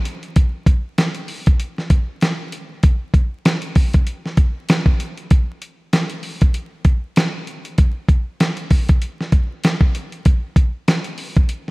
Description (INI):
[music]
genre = hip hop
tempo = 97 BPM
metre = 4/4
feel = swing 57% on 16ths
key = none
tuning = none
[part]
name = dusty soul sampler-style drum kit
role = drums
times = 0.1-11.7 s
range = hi-hat, kick drum, snare drum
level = -15 LUFS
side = equal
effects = none
[sound]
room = little or no reverb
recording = rough home demo mix, vinyl crackle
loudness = -16 LUFS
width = side -25 dB against mid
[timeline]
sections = 0.0-11.7 A section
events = none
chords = none